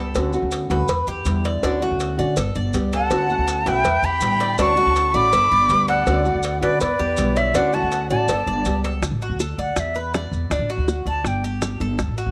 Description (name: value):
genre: latin, Cuban son and guajira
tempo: 162 BPM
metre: 4/4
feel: straight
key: D major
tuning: A4 = 440 Hz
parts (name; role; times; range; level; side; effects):
- nylon-string guitar; accompaniment; 0.0-9.0 s; D3 to G4; -27 LUFS; equal; none
- Cuban tres; arpeggios; 0.0-12.3 s; D4 to D5; -30 LUFS; equal; none
- upright bass; bass; 0.0-12.3 s; G1 to D3; -27 LUFS; equal; none
- maracas; percussion; 0.1-12.3 s; none; -38 LUFS; equal; none
- cowbell and bongos; percussion; 0.2-12.2 s; none; -30 LUFS; equal; none
- jazz flute; melody; 2.9-11.4 s; D5 to D6; -22 LUFS; equal; none
- dark studio violin section; second line; 2.9-8.8 s; B4 to B5; -31 LUFS; equal; none
room: light reverb, small room ambience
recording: none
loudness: -20 LUFS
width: mono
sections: 0.0-9.0 A section; 9.0-12.3 B section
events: flute solo 9.0-12.3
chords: 0.2 Dmaj7; 0.9 Em7; 1.6 Dmaj7; 2.4 Gadd9; 3.1 Dmaj7; 3.8 Em7; 4.6 Dmaj7; 5.3 Gadd9; 6.1 Dmaj7; 6.8 Em7; 7.5 Dmaj7; 8.3 Gadd9; 9.0 D; 9.8 E5; 10.5 D; 11.3 Gsus2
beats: | 0.15 0.52 0.89 1.26 | 1.63 2.00 2.37 2.74 | 3.11 3.48 3.85 4.22 | 4.59 4.96 5.33 5.70 | 6.07 6.44 6.81 7.18 | 7.55 7.92 8.29 8.66 | 9.03 9.40 9.77 10.14 | 10.51 10.88 11.25 11.62 | 11.99